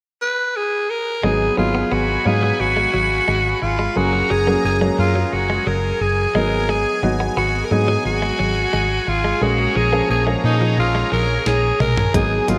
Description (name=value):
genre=1980s-style pop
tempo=88 BPM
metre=4/4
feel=straight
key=G# dorian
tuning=A4 = 441 Hz
part: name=breathy alto saxophone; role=melody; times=0.2-12.6 s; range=D#4 to B4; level=-22 LUFS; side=equal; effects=shimmer reverb, delay
part: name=warm baby grand piano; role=accompaniment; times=1.2-12.6 s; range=E#3 to E#5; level=-25 LUFS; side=equal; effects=shimmer reverb
part: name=phased analog pad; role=sustained chords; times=1.2-12.6 s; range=G#4 to B5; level=-29 LUFS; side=equal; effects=phaser, chorus, shimmer reverb
part: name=direct-recorded clean electric guitar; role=riff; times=1.2-12.5 s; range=E#3 to B3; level=-31 LUFS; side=equal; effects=none
part: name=hollow-body short-scale fingered electric bass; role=bass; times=1.2-12.6 s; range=F#1 to A#2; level=-24 LUFS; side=equal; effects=none
part: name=clean 12-bit digital drum machine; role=drums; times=11.5-12.6 s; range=hi-hat, kick drum, snare drum, toms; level=-24 LUFS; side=equal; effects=none
room=moderate plate reverb, RT60 2.2 s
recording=bright 1980s-style digital production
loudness=-19 LUFS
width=mono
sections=0.0-1.2 A section; 1.2-12.6 B section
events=drum fill 11.5-12.1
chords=0.0 N.C.; 1.2 G#m7; 4.0 F#add9; 6.3 G#m7; 9.4 A#m7